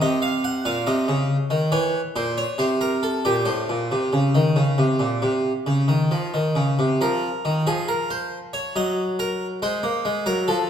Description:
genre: classical, baroque-style two-part invention for harpsichord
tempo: 69 BPM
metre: 4/4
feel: straight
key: unclear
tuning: A4 = 440 Hz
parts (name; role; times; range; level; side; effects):
- harpsichord; solo; 0.0-10.7 s; A2 to Gb5; -20 LUFS; equal; none
room: wet recital hall reverb, RT60 1.4 s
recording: heard from further back in the room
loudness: -20 LUFS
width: side -8 dB against mid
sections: 0.0-7.0 A section; 7.0-10.7 B section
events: none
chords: 0.0 Cm; 1.7 Edim7; 3.5 N.C.; 7.0 Bb5; 8.7 Cm7b5/Gb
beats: | 0.00 0.86 1.73 2.60 | 3.48 4.36 5.25 6.13 | 7.02 7.88 8.75 9.61 | 10.47

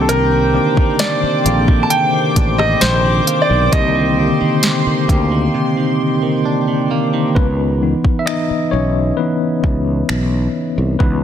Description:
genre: contemporary R&B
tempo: 66 BPM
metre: 4/4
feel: straight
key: unclear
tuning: A4 = 439 Hz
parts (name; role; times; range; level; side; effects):
- warm concert grand piano; melody; 0.0-6.4 s; A4 to A5; -18 LUFS; right 1 dB; tape echo
- tine electric piano; accompaniment; 0.0-11.2 s; D3 to E5; -18 LUFS; left 3 dB; medium stereo tremolo
- chorused pulse-width pad; sustained chords; 0.0-7.3 s; C5 to D6; -22 LUFS; left 2 dB; sidechain pumping
- direct-recorded clean electric guitar; arpeggios; 0.0-8.0 s; C3 to D4; -22 LUFS; right 8 dB; tape echo
- sustaining fretless electric bass; bass; 0.0-11.2 s; A1 to D2; -18 LUFS; equal; none
- smooth R&B drum kit; drums; 0.1-11.2 s; finger snaps, hi-hat, kick drum, rim click, snare drum; -17 LUFS; equal; overdrive
room: light reverb, digital ambience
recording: dense, heavily limited modern master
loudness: -13 LUFS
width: side -9 dB against mid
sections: 0.0-7.4 A section; 7.4-11.2 B section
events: silent gap 5.5-7.4; hi-hats muted 7.4-11.2; tine electric piano solo 7.4-11.2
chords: 0.0 Cm9; 7.4 C#m9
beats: | 0.09 1.00 1.91 2.82 | 3.73 4.64 5.55 6.46 | 7.37 8.27 9.18 10.09 | 11.00

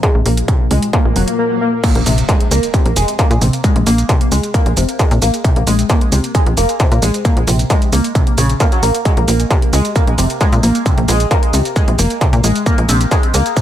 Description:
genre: driving peak-time techno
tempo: 133 BPM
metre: 4/4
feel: straight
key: Bb minor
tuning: A4 = 439 Hz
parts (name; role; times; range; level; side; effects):
- overdriven synth lead; riff; 0.0-13.6 s; C3 to Bb3; -17 LUFS; equal; distortion, phaser, wide subtle chorus, sidechain pumping, analog delay
- deep dark ambient pad; drone; 0.0-1.4 s; Bb2 to F3; -30 LUFS; left 2 dB; chorus, built-in reverb, sidechain pumping
- electronic kick drum; drums; 0.0-13.6 s; none; -14 LUFS; equal; distortion, overdrive, small room ambience
- techno drum kit; drums; 0.0-13.6 s; crash cymbal, hi-hat, shaker; -22 LUFS; right 2 dB; overdrive, sidechain pumping on hats, small room ambience, sidechain pumping on cymbals, sidechain pumping on perc
- tight sequencer bass; bass; 0.1-13.4 s; F1 to Bb2; -14 LUFS; equal; sidechain pumping
- swell and impact; sound effects; 1.1-3.6 s; none; -22 LUFS; left 2 dB; none
room: digital ambience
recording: echo-heavy mix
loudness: -11 LUFS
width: side -11 dB against mid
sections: 0.0-1.8 A section; 1.8-13.6 B section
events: filter sweep on analog synth lead 0.0-1.8; swell 1.1-1.8; drop 1.8-13.6; impact 1.8-3.6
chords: 0.0 Bb5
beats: | 0.03 0.48 0.93 1.39 | 1.84 2.29 2.74 3.19 | 3.64 4.09 4.54 4.99 | 5.45 5.90 6.35 6.80 | 7.25 7.70 8.15 8.60 | 9.05 9.51 9.96 10.41 | 10.86 11.31 11.76 12.21 | 12.66 13.11 13.56

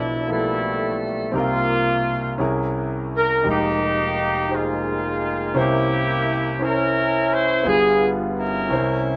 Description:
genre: gospel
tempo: 57 BPM (dotted quarters)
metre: 6/8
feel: straight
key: unclear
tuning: A4 = 437 Hz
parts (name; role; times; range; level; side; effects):
- clear horn section; melody; 0.0-9.2 s; G3 to C5; -23 LUFS; equal; none
- bright concert grand piano; accompaniment; 0.0-9.2 s; F1 to C5; -25 LUFS; equal; none
room: light reverb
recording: rough home demo mix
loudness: -21 LUFS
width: mono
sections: 0.0-9.2 A section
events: none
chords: 0.0 G13/B; 1.3 C7sus4; 2.4 C7b9b13; 3.5 Fm11; 5.6 C7b9; 7.7 G7b9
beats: 0.29 | 1.34 2.40 | 3.45 4.50 | 5.56 6.61 | 7.66 8.71

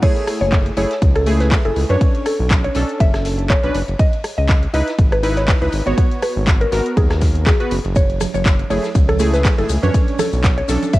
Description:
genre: deep house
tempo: 121 BPM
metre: 4/4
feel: swing 55% on 16ths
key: unclear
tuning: A4 = 440 Hz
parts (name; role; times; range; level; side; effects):
- mallet-like synth pluck; melody; 0.0-11.0 s; G#4 to E5; -23 LUFS; equal; chorus, tape echo
- warm analog keys; stabs; 0.0-11.0 s; A3 to C#5; -22 LUFS; equal; chorus, sidechain pumping, cassette tape
- electronic kick drum; drums; 0.0-11.0 s; none; -15 LUFS; equal; overdrive, small room reverb
- house drum kit; drums; 0.0-11.0 s; crash cymbal, handclaps, hi-hat, ride cymbal, rim click; -25 LUFS; equal; overdrive, small room reverb
- tight metal drum kit; drums; 0.0-11.0 s; hi-hat, ride cymbal, snare drum; -36 LUFS; equal; high-pass filter on cymbals, low-pass filter on cymbals, small room reverb, high-pass filter on hats, low-pass filter on hats, high-pass filter on snare, low-pass filter on snare, high-pass filter on room, low-pass filter on room
- round analog bass; bass; 0.4-11.0 s; F#1 to F#2; -19 LUFS; equal; tube saturation, sidechain pumping
- congas; percussion; 8.0-10.9 s; none; -28 LUFS; right 12 dB; sidechain pumping on perc
- maracas; percussion; 8.0-11.0 s; none; -34 LUFS; left 13 dB; none
room: light reverb, studio ambience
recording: home recording on cassette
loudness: -14 LUFS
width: side -18 dB against mid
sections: 0.0-11.0 A section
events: drop 0.0-11.0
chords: 0.0 F#m9; 2.0 Bm9; 4.0 C#m9; 6.0 G#m9; 8.0 F#m9; 9.9 Bm9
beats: | 0.03 0.52 1.02 1.51 | 2.01 2.51 3.00 3.50 | 3.99 4.49 4.99 5.48 | 5.98 6.47 6.97 7.46 | 7.96 8.46 8.95 9.45 | 9.94 10.44 10.94

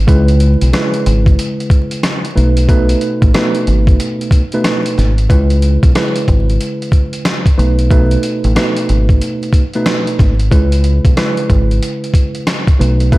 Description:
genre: hip hop, boom-bap hip-hop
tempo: 92 BPM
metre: 4/4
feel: swing 62% on 16ths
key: C# minor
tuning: A4 = 444 Hz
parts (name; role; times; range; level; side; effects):
- deep dub fingered electric bass; bass; 0.0-13.2 s; G#1 to C#2; -12 LUFS; equal; none
- tine electric piano; accompaniment; 0.1-13.2 s; B2 to B4; -16 LUFS; right 1 dB; medium stereo tremolo, cassette tape, high-pass filter, low-pass filter
- dusty soul sampler-style drum kit; drums; 0.1-13.2 s; hi-hat, kick drum, rim click, snare drum; -13 LUFS; equal; none
room: light reverb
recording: vinyl crackle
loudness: -10 LUFS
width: side -19 dB against mid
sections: 0.0-5.3 A section; 5.3-13.2 B section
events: none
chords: 0.1 C#m7; 2.4 B7; 5.3 C#m7; 7.6 B7; 10.5 C#m7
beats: | 0.08 0.73 1.38 2.04 | 2.69 3.34 3.99 4.64 | 5.30 5.95 6.60 7.25 | 7.91 8.56 9.21 9.86 | 10.51 11.17 11.82 12.47 | 13.12

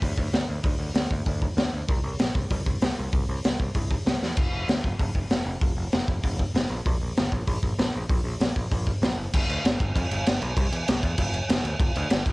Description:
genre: punk rock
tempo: 194 BPM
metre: 4/4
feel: straight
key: unclear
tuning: A4 = 444 Hz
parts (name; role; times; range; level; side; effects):
- overdriven picked electric bass; bass; 0.0-12.3 s; F1 to F2; -30 LUFS; equal; none
- raw garage drum kit; drums; 0.0-12.3 s; crash cymbal, hi-hat, kick drum, snare drum; -24 LUFS; equal; none
room: little or no reverb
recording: home recording on cassette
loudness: -23 LUFS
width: side -23 dB against mid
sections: 0.0-9.3 A section; 9.3-12.3 B section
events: drum fill 4.2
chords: none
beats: 0.02 0.33 | 0.64 0.95 1.27 1.58 | 1.89 2.20 2.51 2.82 | 3.13 3.44 3.75 4.06 | 4.37 4.68 4.99 5.30 | 5.61 5.92 6.23 6.54 | 6.85 7.16 7.47 7.78 | 8.09 8.40 8.71 9.02 | 9.33 9.64 9.95 10.25 | 10.56 10.87 11.18 11.49 | 11.79 12.10

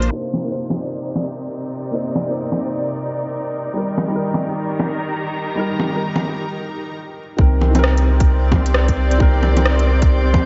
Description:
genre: future garage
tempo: 132 BPM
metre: 4/4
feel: swing 61% on 16ths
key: unclear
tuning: A4 = 440 Hz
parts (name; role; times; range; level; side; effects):
- felt-muted upright piano; accompaniment; 0.0-10.5 s; Eb3 to C5; -27 LUFS; equal; sidechain pumping, analog delay
- rich studio string section; sustained chords; 0.0-10.5 s; Bb2 to Bb5; -26 LUFS; equal; sidechain pumping, low-pass filter
- warm sub bass; bass; 0.0-0.1, 7.4-10.5 s; C2; -18 LUFS; equal; sidechain pumping
- organic electronic drum kit; drums; 0.0-10.4 s; bongos, hi-hat, rim click; -25 LUFS; equal; none
- drifting glass-harmonics texture; texture; 0.0-0.1, 8.3-10.5 s; C5 to A5; -32 LUFS; equal; chorus, built-in reverb
- electronic kick drum; drums; 7.4-10.4 s; none; -17 LUFS; equal; none
room: moderate huge ambient reverb, RT60 3.9 s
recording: dreamy mix soaked in reverb, vinyl crackle, low-pass filter, nothing above 7.8 kHz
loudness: -19 LUFS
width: mono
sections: 0.1-7.4 A section; 7.4-10.5 B section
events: filter sweep on string section 0.1-7.4; filter sweep 0.1-7.4; stop 6.9-7.4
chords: 0.1 Cm7; 3.7 Eb; 7.4 Cm7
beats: | 0.11 0.57 1.02 1.48 | 1.93 2.38 2.84 3.29 | 3.75 4.20 4.66 5.11 | 5.57 6.02 6.48 6.93 | 7.38 7.84 8.29 8.75 | 9.20 9.66 10.11

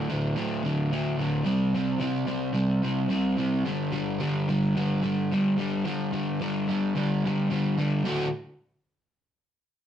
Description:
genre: rock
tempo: 109 BPM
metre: 4/4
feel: straight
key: unclear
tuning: A4 = 439 Hz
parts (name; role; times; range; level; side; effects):
- crunchy overdriven guitar; solo; 0.0-8.3 s; D2 to F#4; -24 LUFS; equal; none
room: moderate studio reverb, RT60 0.6 s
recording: rough rehearsal-room recording, tube saturation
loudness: -24 LUFS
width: side -10 dB against mid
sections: 0.0-8.1 A section; 8.1-9.9 B section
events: none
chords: 0.0 D5; 1.5 C5; 3.7 G5; 8.1 D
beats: 0.36 0.91 | 1.46 2.00 2.55 3.10 | 3.65 4.20 4.75 5.30 | 5.85 6.40 6.95 7.50 | 8.05

